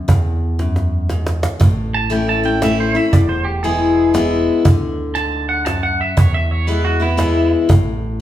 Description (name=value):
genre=honky-tonk and classic country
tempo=118 BPM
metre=3/4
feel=swing 64% on 8ths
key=unclear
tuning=A4 = 440 Hz
part: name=picked steel-string acoustic guitar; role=accompaniment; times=0.0-8.2 s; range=E2 to E4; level=-18 LUFS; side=left 3 dB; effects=none
part: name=fingered electric bass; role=bass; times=0.1-8.2 s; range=E1 to E2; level=-21 LUFS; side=right 1 dB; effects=none
part: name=cajon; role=drums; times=0.1-7.8 s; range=none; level=-15 LUFS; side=right 1 dB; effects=none
part: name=twangy electric guitar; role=second line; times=1.9-7.5 s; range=E4 to A5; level=-20 LUFS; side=right 4 dB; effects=none
room=wet large studio reverb, RT60 1.1 s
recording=band playing live in one room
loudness=-14 LUFS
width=side -12 dB against mid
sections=0.0-1.6 A section; 1.6-8.2 B section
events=drum fill 0.6-1.6; clean electric guitar solo 1.6-8.2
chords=0.1 E; 1.6 A; 3.1 E; 4.7 D; 6.2 E; 7.7 N.C.